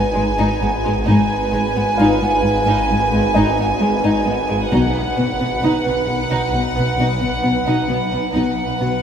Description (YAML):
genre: cinematic, suspense film score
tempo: 66 BPM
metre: 4/4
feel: straight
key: unclear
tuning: A4 = 442 Hz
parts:
  - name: clear studio violin section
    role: melody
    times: 0.0-9.0 s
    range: F#5 to G#5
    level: -21 LUFS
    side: right 1 dB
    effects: none
  - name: dark studio violin section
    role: second line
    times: 0.0-9.0 s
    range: G#3 to B4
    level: -20 LUFS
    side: right 1 dB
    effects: none
  - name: warm chamber cello section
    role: bass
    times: 0.0-8.9 s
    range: G#2 to B2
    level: -22 LUFS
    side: equal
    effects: none
  - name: swarming drone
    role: drone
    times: 0.0-9.0 s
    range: G#1 to B1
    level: -25 LUFS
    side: equal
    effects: built-in reverb
  - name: clear grand piano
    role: texture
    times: 0.0-9.0 s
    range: F4 to F5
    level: -29 LUFS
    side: left 1 dB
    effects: none
  - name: warm studio cello section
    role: riff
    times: 0.2-9.0 s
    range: G#2 to B3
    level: -23 LUFS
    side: left 2 dB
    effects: none
  - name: rich studio double bass section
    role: bass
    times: 1.1-8.6 s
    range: G#1 to B1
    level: -24 LUFS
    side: right 1 dB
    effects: none
room: wet cathedral reverb, RT60 6.5 s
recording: in a vast, echoing space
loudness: -15 LUFS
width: side -8 dB against mid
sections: 0.0-9.0 A section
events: none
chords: 0.0 G#m; 4.7 B